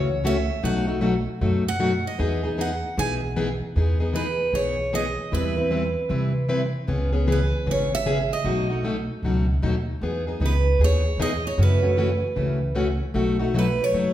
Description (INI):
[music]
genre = acoustic string swing (jazz manouche)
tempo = 153 BPM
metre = 4/4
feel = swing 63% on 8ths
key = E major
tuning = A4 = 440 Hz
[part]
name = picked steel-string acoustic guitar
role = melody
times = 0.0-14.1 s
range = B4 to G#5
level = -26 LUFS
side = right 3 dB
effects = none
[part]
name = picked plugged-in steel-string acoustic guitar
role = accompaniment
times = 0.0-14.1 s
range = B2 to B4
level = -25 LUFS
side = left 2 dB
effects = none
[part]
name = upright bass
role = bass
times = 0.0-14.1 s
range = F#1 to C3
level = -25 LUFS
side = equal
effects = none
[sound]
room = wet recital hall reverb, RT60 1.4 s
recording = recorded in a church or concert hall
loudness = -21 LUFS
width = side -12 dB against mid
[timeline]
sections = 0.0-3.8 A section; 3.8-14.1 B section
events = steel-string acoustic guitar solo 0.0-3.8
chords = 0.0 F#m7; 0.6 B7; 2.2 Emaj7; 5.3 Cmaj7/E; 6.9 C#m7; 8.5 B7; 10.0 Emaj7; 11.6 F#m7; 13.1 B7